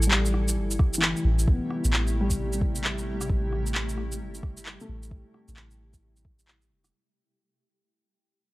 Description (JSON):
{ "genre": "future garage", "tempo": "132 BPM", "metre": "4/4", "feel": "swing 62% on 16ths", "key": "A minor", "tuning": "A4 = 440 Hz", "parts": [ { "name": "granular cloud pad", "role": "sustained chords", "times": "0.0-6.9 s", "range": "C3 to G4", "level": "-35 LUFS", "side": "equal", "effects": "built-in reverb, vintage 12-bit sampler grit, sidechain pumping" }, { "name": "soft 808-style bass", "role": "bass", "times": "0.0-6.9 s", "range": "E1 to A1", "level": "-27 LUFS", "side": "equal", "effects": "tube saturation, sidechain pumping" }, { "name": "electronic shaker, handclaps and rim click", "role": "drums", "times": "0.0-6.9 s", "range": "none", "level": "-27 LUFS", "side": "equal", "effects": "none" }, { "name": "felt-muted upright piano", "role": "accompaniment", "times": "0.1-7.0 s", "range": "E3 to B3", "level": "-32 LUFS", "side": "left 2 dB", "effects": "sidechain pumping, tape echo" }, { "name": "electronic kick drum", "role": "drums", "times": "0.8-6.4 s", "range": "none", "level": "-24 LUFS", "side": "equal", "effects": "none" } ], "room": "little or no reverb", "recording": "dry, gritty hardware recording, transformer saturation", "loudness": "-24 LUFS", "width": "side -19 dB against mid", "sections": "0.0-6.9 A section", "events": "fade-out 0.0-6.9", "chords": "0.0 Am7", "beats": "0.11 0.57 1.02 | 1.48 1.93 2.38 2.84 | 3.29 3.75 4.20 4.66 | 5.11 5.57 6.02 6.48" }